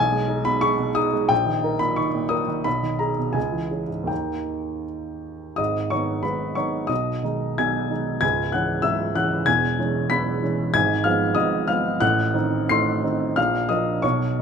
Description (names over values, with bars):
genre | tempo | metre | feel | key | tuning
classical, romantic character piece for solo piano | 78-97 BPM | 2/4 | rubato | G# minor | A4 = 442 Hz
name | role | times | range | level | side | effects
warm upright piano | solo | 0.0-14.4 s | C#1 to C7 | -20 LUFS | equal | none
room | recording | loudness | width
light reverb | none | -20 LUFS | side -6 dB against mid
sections
0.0-5.6 A section; 5.6-14.4 B section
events
none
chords
0.0 G#m/B; 1.3 D#5/A#; 2.7 G#m/B; 3.4 C#m; 4.1 D#; 5.6 G#m; 6.9 G#m/B; 8.2 C#m; 9.5 C#m/E; 10.8 Fdim/Ab; 12.0 Adim7; 13.4 Bb